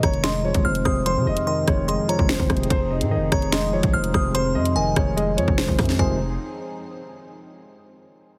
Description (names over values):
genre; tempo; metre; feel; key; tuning
hip hop, drill; 146 BPM; 4/4; half-time; F minor; A4 = 440 Hz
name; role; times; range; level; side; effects
dark grand piano; melody; 0.0-6.2 s; C5 to Eb5; -29 LUFS; equal; tape echo
delicate synth tine bell; second line; 0.0-6.2 s; Ab5 to F6; -32 LUFS; equal; chorus, tape echo
tine electric piano; accompaniment; 0.0-6.2 s; F2 to Ab3; -28 LUFS; equal; overdrive
dark analog pad; sustained chords; 0.1-6.2 s; F3 to Ab4; -36 LUFS; equal; chorus, phaser
distorted 808-style bass; bass; 0.0-6.4 s; F1 to C3; -28 LUFS; equal; distortion
drill drum kit; drums; 0.0-6.1 s; finger snaps, hi-hat, kick drum, rim click, snare drum, toms; -25 LUFS; equal; none
room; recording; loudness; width
light reverb, digital ambience; heavily compressed radio sound, multiband compression; -21 LUFS; mono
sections
0.0-6.0 A section; 6.0-7.6 B section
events
none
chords
0.0 Fm7